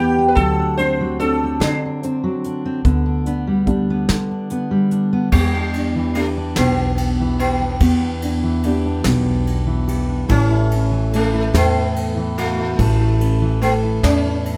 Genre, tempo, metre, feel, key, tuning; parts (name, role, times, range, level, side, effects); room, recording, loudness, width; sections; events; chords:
acoustic folk duo or small band; 48 BPM (dotted quarters); 6/8; straight; E dorian; A4 = 440 Hz
sitar; second line; 0.0-14.6 s; G3 to C5; -24 LUFS; equal
fingerpicked steel-string acoustic guitar; accompaniment; 0.0-14.6 s; E2 to A4; -24 LUFS; equal
felt-muted upright piano; arpeggios; 0.0-14.6 s; E3 to A4; -26 LUFS; equal
upright bass; bass; 0.0-14.6 s; A1 to E3; -23 LUFS; equal
soft brush drum kit; drums; 0.4-14.6 s; crash cymbal, hi-hat, kick drum, ride cymbal, snare drum; -27 LUFS; equal
light reverb; -18 LUFS; mono
0.0-5.3 A section; 5.3-14.6 B section
sitar solo 0.0-5.3
0.4 D7; 2.8 G/D; 5.3 Em7; 10.3 A